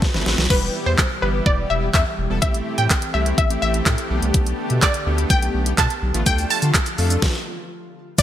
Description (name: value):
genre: dance-pop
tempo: 125 BPM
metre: 4/4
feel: straight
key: unclear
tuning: A4 = 440 Hz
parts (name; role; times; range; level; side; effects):
- analog pluck; melody; 0.0-8.2 s; B4 to A5; -24 LUFS; equal; chorus
- big bright polysynth; accompaniment; 0.0-8.2 s; G3 to B4; -28 LUFS; equal; chorus, sidechain pumping
- pop drum kit; drums; 0.0-8.2 s; crash cymbal, handclaps, hi-hat, kick drum, shaker, snare drum; -20 LUFS; equal; overdrive, gated reverb
- saturated sub bass; bass; 0.1-8.2 s; E1 to D3; -22 LUFS; equal; sidechain pumping
- airy breathy pad; sustained chords; 0.5-7.2 s; B2 to G4; -30 LUFS; equal; chorus, sidechain pumping
room: light reverb, digital ambience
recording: bright 1980s-style digital production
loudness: -17 LUFS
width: side -11 dB against mid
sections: 0.5-8.2 A section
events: drum fill 0.0-0.5; stop 7.2-8.2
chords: 0.0 Am; 0.5 Em; 2.4 Am7; 4.1 Gadd9/B; 6.3 Dm